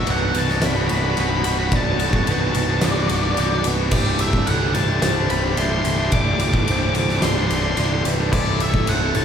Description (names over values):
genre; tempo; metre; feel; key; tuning
post-rock; 109 BPM; 4/4; straight; unclear; A4 = 440 Hz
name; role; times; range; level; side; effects
octave-fuzz lead guitar; melody; 0.0-9.2 s; D5 to D6; -25 LUFS; left 2 dB; distortion, tape echo
pedal steel guitar; sustained chords; 0.0-9.2 s; F#4 to B5; -37 LUFS; left 2 dB; none
crunchy overdriven guitar; riff; 0.0-9.2 s; D2 to A4; -26 LUFS; right 10 dB; none
tight distorted guitar; riff; 0.0-9.2 s; D2 to A4; -27 LUFS; left 11 dB; distortion
vibraphone with hard mallets; arpeggios; 0.1-9.2 s; A4 to F#5; -30 LUFS; right 4 dB; tape echo
fuzz picked electric bass; bass; 0.1-9.2 s; C1; -22 LUFS; equal; overdrive
oversized low-tuned drum kit; drums; 0.1-9.2 s; crash cymbal, kick drum, ride cymbal, snare drum; -22 LUFS; equal; none
room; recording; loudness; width
light reverb, small room ambience; none; -17 LUFS; side -8 dB against mid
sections
0.0-9.2 A section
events
none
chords
0.0 Bm7/C; 3.9 D7sus4/C; 8.3 Amadd9/C